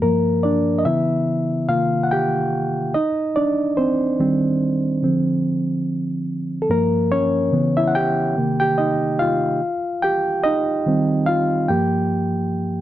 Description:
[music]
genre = R&B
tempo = 72 BPM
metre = 4/4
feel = swing 56% on 16ths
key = G minor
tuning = A4 = 439 Hz
[part]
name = reed electric piano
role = solo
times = 0.0-12.8 s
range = G2 to G5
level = -18 LUFS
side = equal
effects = none
[sound]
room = moderate studio reverb, RT60 0.6 s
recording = dark, warm production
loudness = -18 LUFS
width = side -13 dB against mid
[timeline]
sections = 0.0-12.8 A section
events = reed electric piano solo 0.0-12.8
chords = 0.0 Gm7; 0.8 C#m7; 1.7 Cm7; 2.9 Eb6; 5.0 Dm7; 6.7 Gm7; 7.5 C#m7; 8.3 Cm7; 9.6 Eb69; 11.7 Gm7

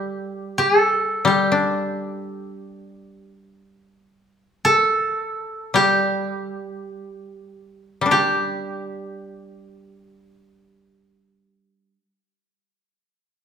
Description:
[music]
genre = japanese traditional, Japanese chamber music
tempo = free time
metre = none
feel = none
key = unclear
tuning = A4 = 440 Hz
[part]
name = koto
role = melody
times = 0.0-12.0 s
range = G4 to A4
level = -20 LUFS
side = right 1 dB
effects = none
[part]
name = koto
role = accompaniment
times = 0.0-12.0 s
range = G3 to G4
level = -23 LUFS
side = left 3 dB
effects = none
[sound]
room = moderate recital hall reverb, RT60 1.3 s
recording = none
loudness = -18 LUFS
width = side -7 dB against mid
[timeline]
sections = 0.0-8.1 A section; 8.1-12.8 B section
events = slowing down 0.0-8.1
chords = none

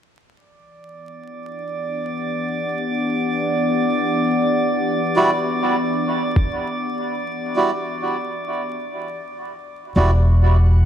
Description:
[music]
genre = ambient dub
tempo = free time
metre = none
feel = none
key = E minor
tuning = A4 = 440 Hz
[part]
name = warbly tape-like pad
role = sustained chords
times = 1.8-8.8 s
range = E3 to F#5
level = -24 LUFS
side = left 3 dB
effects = chorus, built-in reverb
[part]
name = drifting glass-harmonics texture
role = texture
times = 1.0-10.9 s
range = D5 to F#5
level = -25 LUFS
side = right 3 dB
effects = chorus, built-in reverb
[part]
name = melodica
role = stabs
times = 5.2-10.1 s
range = G3 to D5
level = -22 LUFS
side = right 1 dB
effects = dub echo
[part]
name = electronic kick drum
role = drums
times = 6.4-6.5 s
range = none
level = -17 LUFS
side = equal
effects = none
[part]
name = upright bass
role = bass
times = 10.0-10.9 s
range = E1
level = -13 LUFS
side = equal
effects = none
[sound]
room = moderate echo chamber reverb, RT60 1.8 s, small room ambience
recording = vinyl crackle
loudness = -18 LUFS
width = side -10 dB against mid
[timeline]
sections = 0.4-10.0 A section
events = fade-in on ambient pad 0.4-10.0; break 8.8-10.0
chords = 0.4 Em9

